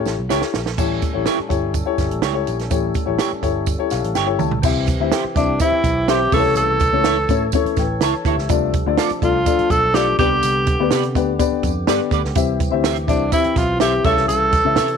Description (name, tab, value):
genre	uptempo 1960s-style soul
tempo	124 BPM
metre	4/4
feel	straight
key	unclear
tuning	A4 = 442 Hz
part	breathy tenor saxophone	melody	0.0-0.3, 5.4-15.0 s	C#4 to A4	-18 LUFS	right 1 dB	slapback echo
part	dark upright piano	accompaniment	0.0-14.9 s	A2 to A5	-21 LUFS	left 13 dB	none
part	vintage muted picked electric bass	bass	0.0-15.0 s	G1 to C3	-24 LUFS	right 1 dB	none
part	compact cocktail drum kit	drums	0.1-15.0 s	crash cymbal, hi-hat, kick drum, snare drum, toms	-22 LUFS	right 4 dB	none
part	tambourine	percussion	0.1-14.9 s	none	-35 LUFS	right 17 dB	none
part	electric guitar at the edge of break-up	stabs	0.3-14.9 s	E4 to E5	-24 LUFS	right 15 dB	analog chorus
part	percussive tonewheel organ	sustained chords	0.8-15.0 s	D3 to C#5	-30 LUFS	right 1 dB	slow rotary speaker
room	studio reverb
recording	1960s-style stereo with parts hard left and right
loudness	-16 LUFS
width	side -6 dB against mid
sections	0.8-4.6 A section; 4.6-15.0 B section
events	drum fill 0.0-0.8, 4.2-4.6; upright piano fill 3.7-4.6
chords	0.0 A7; 4.6 C; 6.3 A/C; 8.5 Dm/C; 10.2 G/C; 12.4 C; 14.0 A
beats	0.30 | 0.78 1.26 1.75 2.23 | 2.71 3.19 3.67 4.15 | 4.64 5.12 5.60 6.08 | 6.56 7.05 7.53 8.01 | 8.49 8.98 9.46 9.95 | 10.43 10.91 11.39 11.88 | 12.36 12.84 13.32 13.81 | 14.29 14.77